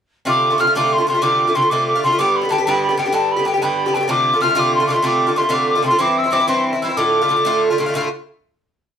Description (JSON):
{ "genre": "celtic folk, Celtic slide", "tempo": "125 BPM (dotted quarters)", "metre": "12/8", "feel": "straight", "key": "D dorian", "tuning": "A4 = 440 Hz", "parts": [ { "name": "mellow hollow mid whistle", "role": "melody", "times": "0.3-7.6 s", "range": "G5 to F6", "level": "-17 LUFS", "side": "equal", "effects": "none" }, { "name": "Irish bouzouki", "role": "accompaniment", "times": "0.3-8.1 s", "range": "G2 to G4", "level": "-18 LUFS", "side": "equal", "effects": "none" } ], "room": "moderate studio reverb, RT60 0.5 s", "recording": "none", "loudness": "-14 LUFS", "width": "side -8 dB against mid", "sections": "0.3-7.9 A section; 7.9-9.0 final chord", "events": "none", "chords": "0.3 Dm7; 2.2 G; 4.1 Dm7; 6.0 C; 7.0 Dm", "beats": "| 0.27 0.74 1.22 1.70 | 2.17 2.65 3.13 3.61 | 4.09 4.57 5.04 5.52 | 6.00 6.48 6.96 7.44 | 7.92" }